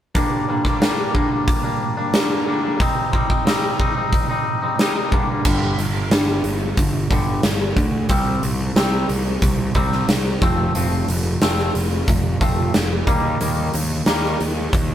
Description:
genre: quiet-loud alternative rock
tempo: 90 BPM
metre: 4/4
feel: straight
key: G minor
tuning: A4 = 440 Hz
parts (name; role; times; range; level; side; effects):
- twangy electric guitar; arpeggios; 0.1-14.9 s; G2 to Eb4; -22 LUFS; left 1 dB; none
- huge arena drum kit; drums; 0.1-14.9 s; crash cymbal, hi-hat, kick drum, snare drum; -20 LUFS; equal; none
- fuzz picked electric bass; bass; 5.5-14.9 s; F1 to Eb2; -22 LUFS; equal; overdrive
room: moderate studio reverb, RT60 0.8 s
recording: band playing live in one room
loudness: -17 LUFS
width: side -11 dB against mid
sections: 0.1-5.5 A section; 5.5-14.9 B section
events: none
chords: 0.1 Gm; 2.8 Cm; 5.1 Gm; 5.5 G5; 8.1 C5; 10.4 F; 13.1 Eb

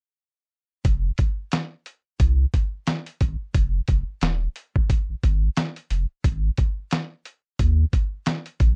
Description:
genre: hip hop, boom-bap hip-hop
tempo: 89 BPM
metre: 4/4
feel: swing 58% on 16ths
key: F minor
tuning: A4 = 441 Hz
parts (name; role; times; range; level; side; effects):
- saturated sub bass; bass; 0.8-8.8 s; Eb1 to Eb2; -24 LUFS; equal; none
- dusty soul sampler-style drum kit; drums; 0.8-8.8 s; hi-hat, kick drum, snare drum; -24 LUFS; equal; overdrive, vintage 12-bit sampler grit
room: little or no reverb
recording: dark, warm production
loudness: -24 LUFS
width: mono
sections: 0.8-8.8 A section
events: none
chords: none

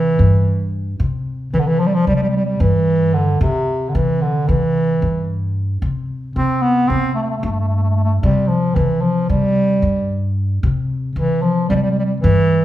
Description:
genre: turkish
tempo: 224 BPM (eighths)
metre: 9/8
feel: straight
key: C makam rast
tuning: A4 = 440 Hz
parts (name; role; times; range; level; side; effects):
- warm bass clarinet; melody; 0.0-12.6 s; C3 to C4; -16 LUFS; right 1 dB; none
- upright bass; bass; 0.0-12.6 s; G2 to C3; -18 LUFS; left 1 dB; none
room: wet large studio reverb, RT60 1.1 s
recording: band playing live in one room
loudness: -15 LUFS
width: side -13 dB against mid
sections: 0.0-12.6 A section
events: none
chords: none

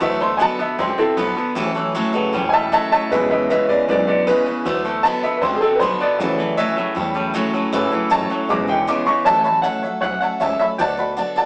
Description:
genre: rockabilly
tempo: 156 BPM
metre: 4/4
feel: straight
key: A major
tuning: A4 = 441 Hz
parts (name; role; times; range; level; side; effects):
- clear upright piano; accompaniment; 0.0-11.5 s; C#3 to D6; -21 LUFS; equal; none
- picked steel-string acoustic guitar; accompaniment; 0.0-11.5 s; A2 to A4; -28 LUFS; equal; none
- twangy electric guitar; riff; 0.0-9.2 s; E2 to C4; -25 LUFS; equal; none
- upright bass; bass; 0.0-11.4 s; E1 to E2; -31 LUFS; equal; none
- electric guitar through a small old amp; melody; 9.3-11.5 s; E5 to A5; -22 LUFS; equal; none
room: moderate studio reverb, RT60 0.7 s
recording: rough rehearsal-room recording, tube saturation, small speaker sound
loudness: -19 LUFS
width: mono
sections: 0.0-9.3 A section; 9.3-11.5 B section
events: upright piano solo 0.0-9.3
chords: 0.0 D6; 1.6 A6; 3.1 E6; 4.7 D6; 6.2 A6; 8.5 E6; 9.3 A6; 10.8 D6

